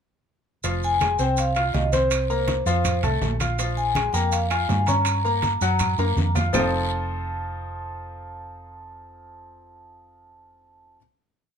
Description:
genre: latin, salsa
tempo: 162 BPM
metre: 4/4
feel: straight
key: unclear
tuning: A4 = 440 Hz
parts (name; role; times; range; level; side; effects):
- bright grand piano; accompaniment; 0.6-11.0 s; F3 to F6; -27 LUFS; left 3 dB; none
- hollow-body short-scale fingered electric bass; bass; 0.6-11.0 s; F1 to G2; -25 LUFS; right 1 dB; none
- congas; percussion; 0.6-6.6 s; none; -30 LUFS; equal; none
- guiro; percussion; 0.6-6.6 s; none; -38 LUFS; left 6 dB; none
- maracas; percussion; 0.6-6.6 s; none; -35 LUFS; right 7 dB; none
- timbales; percussion; 0.6-6.6 s; none; -32 LUFS; right 7 dB; none
- vibraphone with medium mallets; melody; 0.8-11.0 s; C5 to Bb5; -26 LUFS; left 1 dB; none
- claves; percussion; 1.0-6.6 s; none; -35 LUFS; right 7 dB; none
room: light reverb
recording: minimal, uncompressed stereo recording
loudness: -20 LUFS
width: side -7 dB against mid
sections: 0.6-6.5 verse; 6.5-9.5 final chord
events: drum fill 6.0-6.5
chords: 0.6 Fm; 2.1 C7sus4; 2.8 F; 3.6 Bbm7; 5.1 Gdim; 5.8 Gb; 6.5 F7

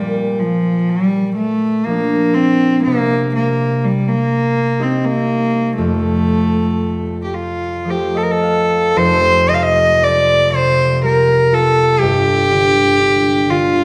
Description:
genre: celtic folk, Celtic slow air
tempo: 53-62 BPM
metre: 3/4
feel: rubato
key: unclear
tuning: A4 = 440 Hz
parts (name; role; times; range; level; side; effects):
- rich cello; melody; 0.0-13.8 s; F3 to F5; -16 LUFS; equal; none
- concert harp; accompaniment; 0.0-13.8 s; F1 to F5; -20 LUFS; equal; none
room: wet recital hall reverb, RT60 1.7 s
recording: recorded in a church or concert hall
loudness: -15 LUFS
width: mono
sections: 0.0-9.0 A section; 9.0-13.8 B section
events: harp fill 7.3-9.0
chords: 0.0 Bb; 2.9 Cm; 5.8 F; 9.0 Fsus2; 12.0 G5

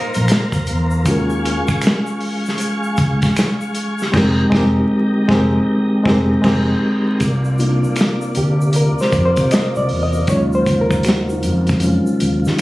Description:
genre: R&B, neo-soul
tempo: 78 BPM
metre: 4/4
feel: swing 63% on 16ths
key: C minor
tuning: A4 = 440 Hz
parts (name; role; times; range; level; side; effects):
- archtop guitar, miked and amplified; second line; 0.0-0.9 s; Bb3 to Eb4; -27 LUFS; right 2 dB; plate reverb
- reed electric piano; accompaniment; 0.0-12.6 s; Gb3 to Eb5; -18 LUFS; equal; overdrive, fast tremolo
- tonewheel organ; sustained chords; 0.0-12.6 s; C3 to Db6; -24 LUFS; equal; slow rotary speaker, chorus vibrato
- warm soul drum kit; drums; 0.1-12.6 s; crash cymbal, hi-hat, kick drum, snare drum; -19 LUFS; equal; none
- tube shaker and finger snaps; percussion; 0.1-12.6 s; none; -33 LUFS; right 2 dB; none
- fretless electric bass; bass; 0.2-12.6 s; F1 to Eb3; -18 LUFS; equal; wide subtle chorus
room: light reverb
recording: recorded on a phone in the room, studio reverb, vinyl crackle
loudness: -14 LUFS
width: side -18 dB against mid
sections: 0.0-7.2 A section; 7.2-12.6 B section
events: band accent 4.1-7.2; reed electric piano solo 7.2-12.6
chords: 0.0 Cm11; 1.1 Ebm11; 4.1 Fm11; 7.2 Cm11; 10.3 Ebm11

